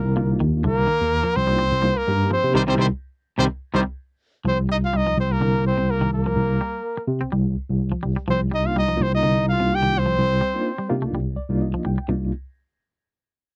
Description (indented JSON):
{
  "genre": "afrobeat",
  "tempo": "126 BPM",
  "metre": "4/4",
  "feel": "straight",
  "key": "C minor",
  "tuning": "A4 = 439 Hz",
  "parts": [
    { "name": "clear trumpet", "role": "melody", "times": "0.0-10.9 s", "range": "Bb4 to G5", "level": "-26 LUFS", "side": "equal", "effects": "none" },
    { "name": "brilliant trombone", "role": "second line", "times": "0.0-10.9 s", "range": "Bb3 to G4", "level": "-32 LUFS", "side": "equal", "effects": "none" },
    { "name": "reed electric piano", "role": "accompaniment", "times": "0.0-3.8, 8.6-12.3 s", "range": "Bb3 to G5", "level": "-30 LUFS", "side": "equal", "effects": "tremolo" },
    { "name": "twangy electric guitar", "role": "arpeggios", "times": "0.0-12.2 s", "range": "C3 to C4", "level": "-30 LUFS", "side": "equal", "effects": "none" },
    { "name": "overdriven tine electric piano", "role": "bass", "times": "0.0-12.3 s", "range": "C2 to C3", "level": "-24 LUFS", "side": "equal", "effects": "fast tremolo" }
  ],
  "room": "little or no reverb",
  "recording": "dry, close 1970s-style studio recording",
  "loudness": "-22 LUFS",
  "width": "mono",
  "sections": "0.0-4.5 A section; 4.5-12.1 B section; 12.1-13.6 C section",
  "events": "band accent 2.5-4.5; reed electric piano fill 11.1-12.1",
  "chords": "0.0 Cm11"
}